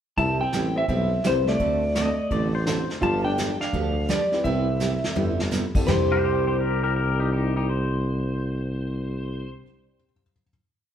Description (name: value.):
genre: country, western swing.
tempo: 168 BPM.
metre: 4/4.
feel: swing 65% on 8ths.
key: C major.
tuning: A4 = 441 Hz.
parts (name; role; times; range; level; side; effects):
clean lap steel guitar; melody; 0.2-9.5 s; C5 to A5; -28 LUFS; left 1 dB; none.
hollow-body jazz guitar; second line; 0.2-9.6 s; G3 to G4; -30 LUFS; right 1 dB; none.
picked steel-string acoustic guitar; accompaniment; 0.2-9.7 s; C3 to A4; -30 LUFS; right 6 dB; none.
mellow tuba; bass; 0.2-9.5 s; G1 to D2; -26 LUFS; equal; none.
vintage brush drum kit; drums; 0.2-6.0 s; brushed snare drum, crash cymbal, hi-hat, kick drum, snare drum, toms; -29 LUFS; equal; none.
honky-tonk upright piano; accompaniment; 1.2-10.5 s; C3 to D7; -35 LUFS; left 4 dB; none.
pedal steel guitar; second line; 2.0-2.9, 6.1-9.5 s; Eb4 to Eb5; -30 LUFS; left 4 dB; none.
room: moderate stone room reverb, RT60 1.1 s.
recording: band playing live in one room.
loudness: -22 LUFS.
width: side -9 dB against mid.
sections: 0.2-5.9 A section; 5.9-8.8 final chord.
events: drum fill 4.8-5.5.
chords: 0.2 Cmaj7; 1.6 D7; 3.0 G7; 4.4 Cmaj7.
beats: | 0.18 0.53 0.89 1.24 | 1.60 1.96 2.31 2.67 | 3.02 3.38 3.73 4.09 | 4.45 4.81 5.16 5.52 | 5.88 6.24 6.60 6.96 | 7.32 7.68 8.04 8.39.